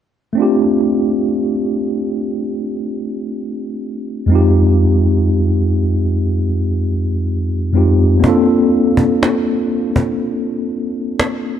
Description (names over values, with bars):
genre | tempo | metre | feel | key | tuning
contemporary R&B | 61 BPM | 4/4 | straight | F major | A4 = 440 Hz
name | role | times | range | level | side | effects
mellow tine electric piano | accompaniment | 0.3-11.6 s | F2 to A4 | -14 LUFS | equal | medium stereo tremolo
cajon | drums | 8.2-11.4 s | none | -19 LUFS | equal | none
room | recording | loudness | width
moderate lush hall reverb, RT60 2.7 s | dark, warm production | -14 LUFS | side -9 dB against mid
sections
0.4-11.6 A section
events
none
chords
0.4 F6; 4.3 Fm9; 8.2 Bbmaj9